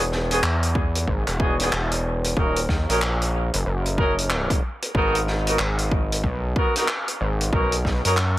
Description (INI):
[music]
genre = glitch hop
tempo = 93 BPM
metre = 4/4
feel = swing 62% on 16ths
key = Eb phrygian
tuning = A4 = 441 Hz
[part]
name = gritty driven synth bass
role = bass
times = 0.0-8.4 s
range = Eb1 to F#2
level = -23 LUFS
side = equal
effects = distortion, tube saturation
[part]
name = raw garage drum kit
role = drums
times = 0.1-8.3 s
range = handclaps, hi-hat, snare drum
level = -26 LUFS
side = equal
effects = none
[part]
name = clear horn section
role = stabs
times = 0.3-8.1 s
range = B3 to Bb4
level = -26 LUFS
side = equal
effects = vintage 12-bit sampler grit, sidechain pumping, tape echo
[part]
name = electronic kick drum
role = drums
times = 0.8-8.0 s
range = none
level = -23 LUFS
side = equal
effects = overdrive
[sound]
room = light reverb, studio ambience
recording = echo-heavy mix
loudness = -20 LUFS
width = side -15 dB against mid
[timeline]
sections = 0.0-8.4 A section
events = none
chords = 0.0 Emaj7; 2.4 Ebm7; 4.9 Abm7; 7.5 Bmaj7